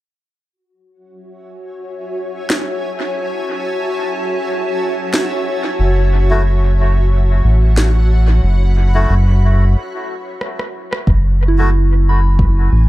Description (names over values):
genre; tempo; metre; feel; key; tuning
ambient dub; 91 BPM; 4/4; swing 55% on 16ths; F# minor; A4 = 439 Hz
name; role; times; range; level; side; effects
granular cloud pad; sustained chords; 1.5-12.9 s; F#4 to B5; -22 LUFS; equal; built-in reverb
electronic snare drum and rim click; drums; 2.5-11.0 s; none; -23 LUFS; equal; dub echo
round analog bass; bass; 5.8-12.9 s; F#1 to A1; -11 LUFS; equal; none
melodica; stabs; 6.3-11.7 s; A3 to F#4; -25 LUFS; left 2 dB; dub echo
electronic kick drum; drums; 11.1-12.5 s; none; -15 LUFS; equal; none
soft synth bell; arpeggios; 11.5-12.9 s; E4 to B5; -21 LUFS; right 5 dB; chorus, dub echo
room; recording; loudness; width
little or no reverb; echo-heavy mix; -13 LUFS; side -16 dB against mid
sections
0.5-11.1 A section; 11.1-12.9 B section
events
break 9.8-11.1; drum fill 10.4-11.1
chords
0.5 F#m7